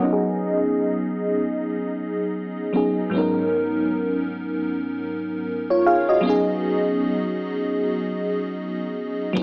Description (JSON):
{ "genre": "contemporary R&B", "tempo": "77 BPM", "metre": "4/4", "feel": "swing 58% on 16ths", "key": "unclear", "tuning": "A4 = 439 Hz", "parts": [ { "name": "FM electric piano with soft pad layer", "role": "accompaniment", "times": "0.0-9.4 s", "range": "G#2 to E#5", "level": "-23 LUFS", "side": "equal", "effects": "chorus, tremolo, low-pass filter" }, { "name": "booming analog drum machine", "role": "drums", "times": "9.4 s", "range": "hi-hat, kick drum", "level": "-34 LUFS", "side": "equal", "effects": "none" } ], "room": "light reverb", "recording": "AM radio sound", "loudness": "-23 LUFS", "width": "mono", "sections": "0.0-9.4 A section", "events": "filter sweep on FM electric piano 0.0-9.4", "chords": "0.0 C#9sus4; 3.1 G#m11; 6.2 C#9sus4" }